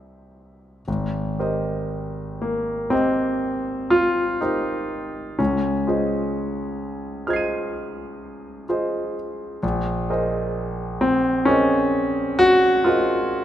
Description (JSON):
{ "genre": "classical, impressionist solo piano", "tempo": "34-44 BPM (dotted quarters)", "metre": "9/8", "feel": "rubato", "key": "Ab major", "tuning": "A4 = 440 Hz", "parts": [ { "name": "warm concert grand piano", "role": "solo", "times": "0.0-13.4 s", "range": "Ab1 to Eb7", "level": "-20 LUFS", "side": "equal", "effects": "none" } ], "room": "moderate scoring stage reverb, RT60 1.8 s", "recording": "none", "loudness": "-20 LUFS", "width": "side -11 dB against mid", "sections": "0.9-13.4 A section", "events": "none", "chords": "0.0 Cmaj7; 0.9 Abmaj9; 5.4 Dbmaj9; 9.6 Bbm11" }